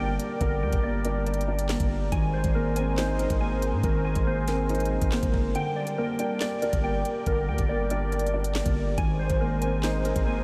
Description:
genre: hip hop, drill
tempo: 140 BPM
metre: 4/4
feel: half-time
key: G phrygian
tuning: A4 = 440 Hz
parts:
  - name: felt-muted upright piano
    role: accompaniment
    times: 0.0-10.4 s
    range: D3 to D5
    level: -33 LUFS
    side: equal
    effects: subtle chorus, low-pass filter
  - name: sweeping resonant pad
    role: sustained chords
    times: 0.0-10.4 s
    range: G3 to D5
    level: -36 LUFS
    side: equal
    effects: chorus
  - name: glassy digital keys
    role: arpeggios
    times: 0.0-10.4 s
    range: Bb4 to Ab5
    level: -34 LUFS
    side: equal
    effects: chorus, low-pass filter, tape echo
  - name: long sustained 808-style bass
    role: bass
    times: 0.0-10.4 s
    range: G1 to Ab2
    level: -31 LUFS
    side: equal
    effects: none
  - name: drill drum kit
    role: drums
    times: 0.2-10.3 s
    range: handclaps, hi-hat, kick drum, snare drum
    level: -32 LUFS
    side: equal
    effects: none
room: moderate huge ambient reverb, RT60 7.1 s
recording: dreamy mix soaked in reverb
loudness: -26 LUFS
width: mono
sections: 0.0-10.4 A section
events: break 5.5-6.0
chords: 0.0 Gm; 2.1 Abadd9; 5.5 Gm; 9.0 Abadd9

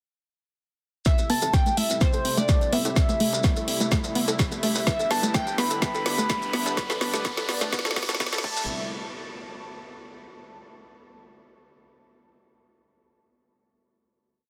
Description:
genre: progressive house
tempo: 126 BPM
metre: 4/4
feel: straight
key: A minor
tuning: A4 = 440 Hz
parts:
  - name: soft octave-layered synth lead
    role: melody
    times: 1.1-8.7 s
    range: C5 to B5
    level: -33 LUFS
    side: equal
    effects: chorus, cassette tape, delay
  - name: glassy wavetable pluck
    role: second line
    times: 1.1-8.7 s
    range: C5 to B5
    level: -39 LUFS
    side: equal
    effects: none
  - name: lush unison pad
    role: sustained chords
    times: 1.1-8.7 s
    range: C3 to E4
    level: -36 LUFS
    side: equal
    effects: chorus, sidechain pumping
  - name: analog pluck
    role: arpeggios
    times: 1.1-8.7 s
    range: A3 to A4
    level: -32 LUFS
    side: equal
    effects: chorus, sidechain pumping, delay
  - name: deep house drum kit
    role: drums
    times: 1.1-8.5 s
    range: crash cymbal, hi-hat, snare drum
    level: -32 LUFS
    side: equal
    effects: studio ambience, sidechain pumping on hats, sidechain pumping on cymbals
  - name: electronic kick drum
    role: drums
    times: 1.1-8.5 s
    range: none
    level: -26 LUFS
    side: equal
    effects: studio ambience
  - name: maracas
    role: percussion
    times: 1.1-8.7 s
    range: none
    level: -36 LUFS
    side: equal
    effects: none
  - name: riser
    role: sound effects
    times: 4.1-8.7 s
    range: none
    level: -40 LUFS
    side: equal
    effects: none
  - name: plucky analog bass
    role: bass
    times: 1.2-8.7 s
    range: D1 to A2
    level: -39 LUFS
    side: equal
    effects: none
room: light reverb, digital ambience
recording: dense, heavily limited modern master, high-pass filter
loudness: -24 LUFS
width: mono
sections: 1.1-8.7 build; 8.7-10.6 final hit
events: build-up 1.1-8.7; drum fill 1.1-8.7; filter sweep on synth pluck 1.1-8.7; filter sweep 1.1-8.7; riser 4.1-8.7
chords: 1.1 Am7; 4.9 G6; 8.4 Am7; 8.7 N.C.

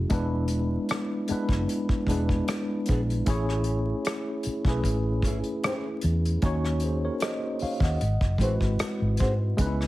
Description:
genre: R&B, neo-soul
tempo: 76 BPM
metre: 4/4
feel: swing 53% on 16ths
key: unclear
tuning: A4 = 441 Hz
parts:
  - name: tine electric piano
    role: accompaniment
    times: 0.0-9.9 s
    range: F#3 to F#5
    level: -28 LUFS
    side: equal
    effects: overdrive, fast stereo tremolo
  - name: vintage muted fingered electric bass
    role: bass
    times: 0.0-9.9 s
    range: E1 to G#2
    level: -26 LUFS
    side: equal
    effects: none
  - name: unplugged drum kit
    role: drums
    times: 0.1-9.9 s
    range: hi-hat, kick drum, rim click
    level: -29 LUFS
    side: equal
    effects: none
  - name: flamenco guitar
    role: second line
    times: 2.1-9.3 s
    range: B3 to G#4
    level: -32 LUFS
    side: equal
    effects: none
room: light reverb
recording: heavily compressed radio sound, vinyl crackle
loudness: -24 LUFS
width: side -17 dB against mid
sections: 0.0-9.9 A section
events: none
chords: 0.1 E7; 3.3 Amaj7; 6.4 D#m7; 8.0 G#7alt

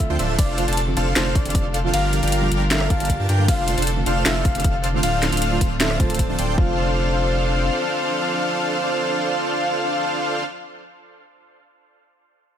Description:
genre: future bass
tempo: 155 BPM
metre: 4/4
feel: half-time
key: F major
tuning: A4 = 440 Hz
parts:
  - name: soft octave-layered synth lead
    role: melody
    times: 0.0-10.4 s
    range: C5 to F5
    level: -29 LUFS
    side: left 2 dB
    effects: chorus, sidechain pumping, dub echo
  - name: soft round pluck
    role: accompaniment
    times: 0.0-11.1 s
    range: D3 to A4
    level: -27 LUFS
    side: right 4 dB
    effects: ensemble chorus, sidechain pumping
  - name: clear studio string section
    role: sustained chords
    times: 0.0-10.4 s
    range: D3 to Bb4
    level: -33 LUFS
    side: left 3 dB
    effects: vintage 12-bit sampler grit, sidechain pumping
  - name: electronic kick drum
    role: drums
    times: 0.0-6.7 s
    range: none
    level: -19 LUFS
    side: equal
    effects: none
  - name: trap drum kit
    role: drums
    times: 0.0-6.5 s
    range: hi-hat, ride cymbal, rim click, snare drum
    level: -25 LUFS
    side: equal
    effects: none
  - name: airy dreamy lead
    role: arpeggios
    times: 0.1-10.4 s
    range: E5 to A5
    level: -29 LUFS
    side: left 1 dB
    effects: chorus, phaser, sidechain pumping
  - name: dense compressed supersaw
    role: riff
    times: 0.1-10.4 s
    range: D4 to A5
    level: -24 LUFS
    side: right 1 dB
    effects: sidechain pumping
  - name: saturated sub bass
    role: bass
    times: 0.1-7.7 s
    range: D1 to G2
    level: -23 LUFS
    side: equal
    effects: sidechain pumping
room: digital ambience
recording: none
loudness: -18 LUFS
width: side -9 dB against mid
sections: 0.0-6.6 A section; 6.6-9.7 B section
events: drop 0.0-6.6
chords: 0.4 F6; 1.9 Gm7; 3.5 F6; 5.0 Dm7; 6.6 F6

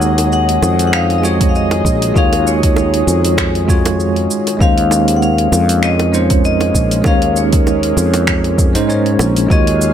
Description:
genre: sunset chillout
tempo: 98 BPM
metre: 4/4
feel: swing 56% on 16ths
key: unclear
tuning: A4 = 440 Hz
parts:
  - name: vibraphone with medium hard mallets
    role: melody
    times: 0.0-9.9 s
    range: Db5 to Gb5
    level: -19 LUFS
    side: equal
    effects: digital delay
  - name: bell-like tine electric piano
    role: accompaniment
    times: 0.0-9.9 s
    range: Ab3 to Db5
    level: -18 LUFS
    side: moving between left 4 dB and right 4 dB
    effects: medium stereo tremolo, auto-pan, ping-pong delay
  - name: lush unison pad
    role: sustained chords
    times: 0.0-9.9 s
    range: Eb3 to F5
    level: -22 LUFS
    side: left 1 dB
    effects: chorus
  - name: sustaining fretless electric bass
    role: bass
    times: 0.0-9.9 s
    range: Bb1 to Ab2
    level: -16 LUFS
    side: equal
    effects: none
  - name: smooth R&B drum kit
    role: drums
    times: 0.0-9.9 s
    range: finger snaps, hi-hat, shaker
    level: -21 LUFS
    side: right 1 dB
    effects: overdrive
  - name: bongos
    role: percussion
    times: 0.2-9.3 s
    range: none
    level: -23 LUFS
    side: right 3 dB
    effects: none
  - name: electronic kick drum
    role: drums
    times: 1.4-9.6 s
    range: none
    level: -15 LUFS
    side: equal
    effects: overdrive
room: little or no reverb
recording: none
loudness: -11 LUFS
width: side -9 dB against mid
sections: 0.0-9.9 A section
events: none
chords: 0.0 Ebm11; 4.6 Bbm11

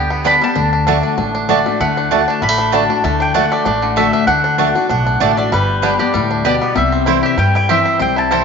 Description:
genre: bluegrass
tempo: 194 BPM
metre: 4/4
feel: swing 54% on 8ths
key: D mixolydian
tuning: A4 = 441 Hz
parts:
  - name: bluegrass banjo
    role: melody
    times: 0.0-8.4 s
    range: D3 to G4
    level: -19 LUFS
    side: right 2 dB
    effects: none
  - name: mandolin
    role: melody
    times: 0.0-8.4 s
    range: B4 to B5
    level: -17 LUFS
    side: left 1 dB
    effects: none
  - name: picked steel-string acoustic guitar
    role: accompaniment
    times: 0.0-8.4 s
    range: G2 to G4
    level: -19 LUFS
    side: left 8 dB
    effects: none
  - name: upright bass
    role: bass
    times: 0.0-8.4 s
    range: G1 to G2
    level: -22 LUFS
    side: right 1 dB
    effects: none
  - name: mandolin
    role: stabs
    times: 0.2-8.4 s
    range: A3 to A5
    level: -20 LUFS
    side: right 9 dB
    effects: none
room: wet echo chamber reverb, RT60 1.9 s, small room ambience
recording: 1960s-style stereo with parts hard left and right, nothing above 7.5 kHz, faint mains hum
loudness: -12 LUFS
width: side -6 dB against mid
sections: 0.0-8.4 A section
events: none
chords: 0.0 G; 0.6 D; 5.5 G; 6.8 C

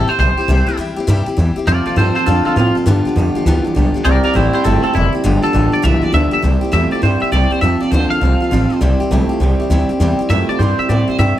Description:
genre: rockabilly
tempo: 202 BPM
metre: 4/4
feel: swing 64% on 8ths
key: C major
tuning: A4 = 441 Hz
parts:
  - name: twangy electric guitar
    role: melody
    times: 0.0-11.4 s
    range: C4 to F5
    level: -19 LUFS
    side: equal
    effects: wide subtle chorus, tape echo
  - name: picked steel-string acoustic guitar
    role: accompaniment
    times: 0.0-11.4 s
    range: G2 to A4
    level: -22 LUFS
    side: left 3 dB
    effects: none
  - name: upright bass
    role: bass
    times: 0.0-11.4 s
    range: F1 to A2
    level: -15 LUFS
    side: equal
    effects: none
  - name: electric guitar through a small old amp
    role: riff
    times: 1.7-11.4 s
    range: F2 to A3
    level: -18 LUFS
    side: right 2 dB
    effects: none
room: light reverb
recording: none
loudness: -12 LUFS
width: side -12 dB against mid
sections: 0.0-6.4 A section; 6.4-11.4 B section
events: none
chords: 0.0 C; 1.7 F; 2.9 G7; 4.1 C; 5.2 G7; 6.4 C; 7.6 F; 8.8 C

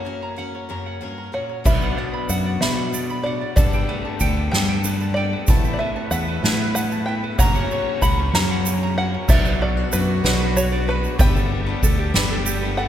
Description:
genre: indie folk with a building arrangement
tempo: 63 BPM (dotted quarters)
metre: 6/8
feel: straight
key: B minor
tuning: A4 = 440 Hz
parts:
  - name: open-back banjo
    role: melody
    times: 0.0-12.9 s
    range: A#4 to B5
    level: -28 LUFS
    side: equal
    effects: none
  - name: fingerpicked steel-string acoustic guitar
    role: accompaniment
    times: 0.0-7.4 s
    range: F#2 to A4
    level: -32 LUFS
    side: left 2 dB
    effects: none
  - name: picked swing-style acoustic guitar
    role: accompaniment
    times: 0.0-12.9 s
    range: F#2 to A#4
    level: -31 LUFS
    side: left 8 dB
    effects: none
  - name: ukulele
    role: arpeggios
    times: 0.0-12.9 s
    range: D4 to B5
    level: -29 LUFS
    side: right 3 dB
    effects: none
  - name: bright baby grand piano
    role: accompaniment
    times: 1.7-12.9 s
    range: F#1 to F#5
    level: -33 LUFS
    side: right 2 dB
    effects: none
  - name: fingered electric bass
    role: bass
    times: 1.7-12.9 s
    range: F#1 to B2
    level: -23 LUFS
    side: equal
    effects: none
  - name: soft-mallet drum kit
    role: drums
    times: 1.7-12.9 s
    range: crash cymbal, kick drum, ride cymbal, snare drum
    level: -21 LUFS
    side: equal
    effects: none
  - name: egg shaker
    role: percussion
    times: 1.7-12.6 s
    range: none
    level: -31 LUFS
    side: right 6 dB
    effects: none
  - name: clear brass ensemble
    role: sustained chords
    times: 5.5-12.9 s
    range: F#3 to B4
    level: -32 LUFS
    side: right 1 dB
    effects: none
room: moderate church reverb, RT60 3.3 s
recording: recorded in a church or concert hall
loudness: -18 LUFS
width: side -10 dB against mid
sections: 0.0-1.6 A section; 1.6-9.3 B section; 9.3-12.9 C section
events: break 0.0-1.6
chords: 0.0 F#; 1.6 Bm; 3.6 Gadd9; 5.5 Asus2; 7.4 F#; 9.3 Bm; 11.2 Gadd9

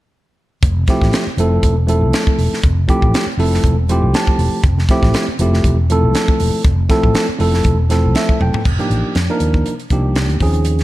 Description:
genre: electric jazz fusion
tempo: 120 BPM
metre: 4/4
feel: swing 55% on 16ths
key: F major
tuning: A4 = 440 Hz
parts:
  - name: mellow fretless electric bass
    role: bass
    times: 0.6-10.8 s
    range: E1 to F2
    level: -16 LUFS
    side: equal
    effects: none
  - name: crisp fusion drum kit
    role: drums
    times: 0.6-10.8 s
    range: crash cymbal, hi-hat, kick drum, snare drum, toms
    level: -17 LUFS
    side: equal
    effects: none
  - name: tine electric piano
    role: accompaniment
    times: 0.9-10.8 s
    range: F3 to A5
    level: -17 LUFS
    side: right 1 dB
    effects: none
room: light reverb, small room ambience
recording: dark, warm production, lossy compression artefacts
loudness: -13 LUFS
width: side -16 dB against mid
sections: 0.6-8.7 A section; 8.7-10.8 B section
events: tine electric piano fill 3.6-4.6, 7.9-8.7; drum fill 8.4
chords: 0.6 Fmaj9; 8.7 F13sus4

